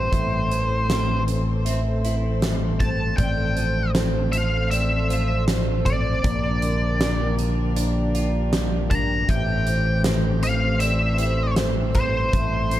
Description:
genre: post-rock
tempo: 79 BPM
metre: 4/4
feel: straight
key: unclear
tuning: A4 = 440 Hz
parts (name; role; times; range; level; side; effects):
- octave-fuzz lead guitar; melody; 0.0-12.8 s; C5 to Bb5; -27 LUFS; left 1 dB; distortion, digital delay
- warm chamber string section; sustained chords; 0.0-12.8 s; E3 to C5; -32 LUFS; equal; none
- semi-hollow electric guitar; arpeggios; 0.0-12.8 s; A2 to F4; -31 LUFS; left 2 dB; wide subtle chorus, digital delay
- vibraphone with medium mallets; arpeggios; 0.0-12.8 s; Bb4 to E5; -32 LUFS; right 5 dB; digital delay
- modern bright fingered electric bass; bass; 0.0-12.8 s; A1 to Bb1; -23 LUFS; equal; none
- huge arena drum kit; drums; 0.1-12.8 s; hi-hat, kick drum, snare drum; -26 LUFS; equal; none
room: little or no reverb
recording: dark, warm production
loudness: -19 LUFS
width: side -13 dB against mid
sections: 0.0-12.8 A section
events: none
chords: 0.0 Am7; 3.2 F/A; 6.2 Gm7/Bb; 9.3 Am7

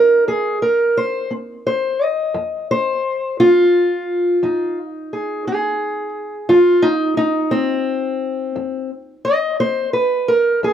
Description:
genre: acoustic country blues, solo or duo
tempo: 58 BPM (dotted quarters)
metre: 12/8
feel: straight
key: F minor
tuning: A4 = 442 Hz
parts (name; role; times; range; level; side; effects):
- fingerpicked steel-string acoustic guitar; solo; 0.0-10.7 s; F2 to Eb5; -15 LUFS; equal; none
room: light reverb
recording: recorded outdoors, with no room sound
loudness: -16 LUFS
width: side -9 dB against mid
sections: 0.0-10.7 A section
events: steel-string acoustic guitar solo 0.0-10.7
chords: 0.0 Fm7

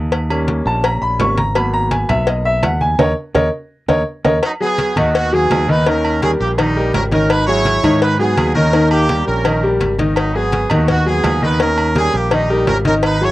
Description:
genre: latin, salsa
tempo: 167 BPM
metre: 4/4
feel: straight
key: G# minor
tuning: A4 = 440 Hz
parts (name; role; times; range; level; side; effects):
- modern bright fingered electric bass; bass; 0.0-13.3 s; G#1 to G#2; -19 LUFS; equal; none
- agogo bells and timbales; percussion; 0.1-13.2 s; none; -24 LUFS; right 3 dB; none
- congas; percussion; 0.1-13.3 s; none; -24 LUFS; equal; none
- cowbell; percussion; 0.1-13.2 s; none; -21 LUFS; left 4 dB; none
- bright upright piano; accompaniment; 0.3-13.3 s; D#3 to C#6; -17 LUFS; left 1 dB; cassette tape
- brilliant horn section; melody; 4.4-13.3 s; F#3 to C#5; -18 LUFS; right 2 dB; cassette tape, analog delay
room: moderate booth ambience, RT60 0.2 s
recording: home recording on cassette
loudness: -13 LUFS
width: side -16 dB against mid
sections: 0.0-4.4 A section; 4.4-13.3 B section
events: upright piano solo 0.0-4.4; band accent 3.0-4.4; drum fill 3.5-4.4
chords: 0.1 D#7; 1.6 G#m7; 3.0 D#5; 4.4 G#m7; 5.9 D#7; 7.3 G#m7; 8.7 D#7; 10.2 G#m7; 11.6 D#7

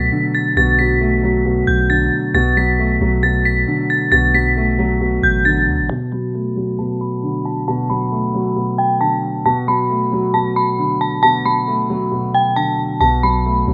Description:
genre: hip hop, trap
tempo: 135 BPM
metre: 4/4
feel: half-time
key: B minor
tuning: A4 = 441 Hz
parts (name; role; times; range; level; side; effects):
- dark detuned synth bell; melody; 0.0-13.7 s; G5 to B6; -20 LUFS; equal; chorus, low-pass filter
- dark grand piano; accompaniment; 0.0-13.7 s; B2 to A3; -21 LUFS; equal; low-pass filter
- long sustained 808-style bass; bass; 0.0-5.9, 13.0-13.7 s; A1 to D2; -22 LUFS; equal; none
room: moderate studio reverb, RT60 0.5 s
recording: rough home demo mix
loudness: -17 LUFS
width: mono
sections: 0.0-5.9 A section; 5.9-13.0 B section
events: filter sweep 5.9-13.0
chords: 0.0 Bm7; 13.0 B7(no3)

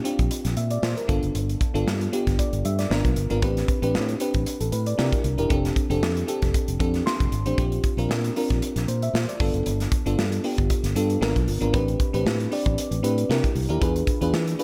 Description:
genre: polished 1980s jazz-funk pop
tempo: 116 BPM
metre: 4/4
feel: swing 54% on 16ths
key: A minor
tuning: A4 = 440 Hz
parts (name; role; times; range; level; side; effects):
- bell-like FM electric piano; accompaniment; 0.0-14.6 s; B3 to C6; -28 LUFS; equal; subtle chorus
- modern studio drum kit; drums; 0.1-14.6 s; hi-hat, kick drum, snare drum; -28 LUFS; equal; gated reverb
- fingered electric bass; bass; 0.2-14.5 s; E1 to E3; -28 LUFS; equal; none
room: studio reverb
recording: none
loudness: -24 LUFS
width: mono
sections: 0.0-14.6 A section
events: FM electric piano fill 6.8-7.6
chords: 0.0 Bb69; 1.1 G7; 2.9 G#dim7; 3.4 Am11; 5.0 C9; 5.5 F69; 7.6 Bb69; 9.4 G7; 11.2 G#dim7; 11.7 Am11; 13.3 C9; 13.8 E7b9

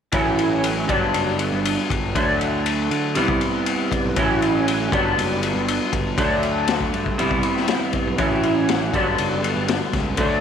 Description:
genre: psychedelic rock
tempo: 119 BPM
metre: 4/4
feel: straight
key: unclear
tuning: A4 = 440 Hz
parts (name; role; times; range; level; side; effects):
- electric guitar through a small old amp; riff; 0.1-10.4 s; G2 to E4; -20 LUFS; right 1 dB; flanger
- fuzz picked electric bass; bass; 0.1-10.4 s; F#1 to D3; -27 LUFS; right 1 dB; overdrive
- raw garage drum kit; drums; 0.1-10.3 s; kick drum, ride cymbal, snare drum; -24 LUFS; left 3 dB; none
room: moderate echo chamber reverb, RT60 1.4 s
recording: 1960s-style stereo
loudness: -18 LUFS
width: side -8 dB against mid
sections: 0.1-10.4 A section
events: none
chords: 0.1 A6; 0.9 Gmaj7; 2.2 D; 3.2 Cmaj7; 4.2 A6; 4.9 Gmaj7; 6.2 D; 7.2 Cmaj7; 8.2 A6; 8.9 Gmaj7

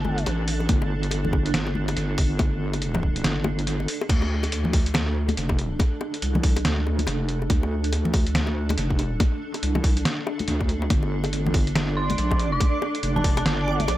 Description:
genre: deep dubstep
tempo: 141 BPM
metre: 4/4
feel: swing 60% on 16ths, half-time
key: D minor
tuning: A4 = 440 Hz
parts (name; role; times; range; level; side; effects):
- dark detuned synth bell; melody; 0.0-0.2, 12.0-13.8 s; A5 to D6; -31 LUFS; equal; chorus, dub echo
- granular cloud pad; sustained chords; 0.0-14.0 s; D4 to A4; -32 LUFS; right 2 dB; built-in reverb
- wobble bass; bass; 0.0-14.0 s; F1 to D2; -25 LUFS; equal; chorus
- bongos and congas; percussion; 0.0-14.0 s; none; -30 LUFS; left 3 dB; dub echo
- trip hop sampler-style drum kit; drums; 0.2-14.0 s; crash cymbal, hi-hat, snare drum; -28 LUFS; equal; studio reverb, tape echo
- electronic kick drum; drums; 0.7-13.3 s; none; -22 LUFS; equal; studio reverb
- backwards swelling texture; texture; 10.9-14.0 s; D4 to D5; -30 LUFS; right 2 dB; built-in reverb
room: little or no reverb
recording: echo-heavy mix, faint mains hum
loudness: -21 LUFS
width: side -14 dB against mid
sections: 0.0-4.1 A section; 4.1-14.0 A section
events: drop 0.0-4.1, 4.1-14.0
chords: 0.0 G5; 4.1 Dm; 10.9 Gm7

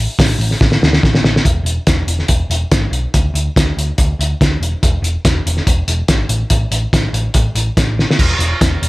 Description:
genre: classic rock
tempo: 142 BPM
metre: 4/4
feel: straight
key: E mixolydian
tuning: A4 = 440 Hz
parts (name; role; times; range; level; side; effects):
- hollow-body short-scale picked electric bass; bass; 0.0-8.9 s; E1 to D2; -17 LUFS; equal; none
- cloth-damped thuddy drum kit; drums; 0.2-8.9 s; crash cymbal, hi-hat, kick drum, snare drum; -14 LUFS; equal; none
room: little or no reverb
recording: none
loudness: -12 LUFS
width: side -20 dB against mid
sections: 0.0-1.5 A section; 1.5-8.9 B section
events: drum fill 0.6-1.5, 8.0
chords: none

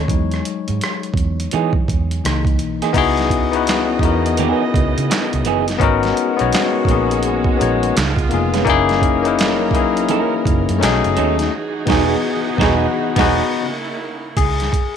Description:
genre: R&B, neo-soul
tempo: 84 BPM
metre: 4/4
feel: swing 63% on 16ths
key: C# dorian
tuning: A4 = 439 Hz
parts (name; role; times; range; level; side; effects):
- barky tine electric piano; accompaniment; 0.0-15.0 s; D#3 to C#5; -18 LUFS; left 8 dB; none
- vintage muted fingered electric bass; bass; 0.0-14.7 s; E1 to E3; -22 LUFS; right 2 dB; none
- boom bap sampler-style drum kit; drums; 0.1-14.9 s; crash cymbal, handclaps, hi-hat, kick drum, rim click, snare drum; -20 LUFS; right 2 dB; none
- electric guitar at the edge of break-up; second line; 1.5-13.4 s; E3 to B4; -23 LUFS; right 13 dB; none
- warm studio string section; sustained chords; 2.9-14.4 s; C#3 to D#5; -24 LUFS; right 4 dB; none
room: light reverb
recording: 1960s-style stereo with parts hard left and right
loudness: -15 LUFS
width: side -8 dB against mid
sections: 0.0-2.9 A section; 2.9-14.4 B section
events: tine electric piano solo 0.0-2.9; band accent 11.5-14.4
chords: 0.1 Emaj9; 2.2 C#m69; 2.9 C#m9; 5.8 G#m9; 7.9 C#7; 8.7 F#7; 10.8 B9; 11.5 Emaj9; 13.7 C#m69; 14.4 C#5

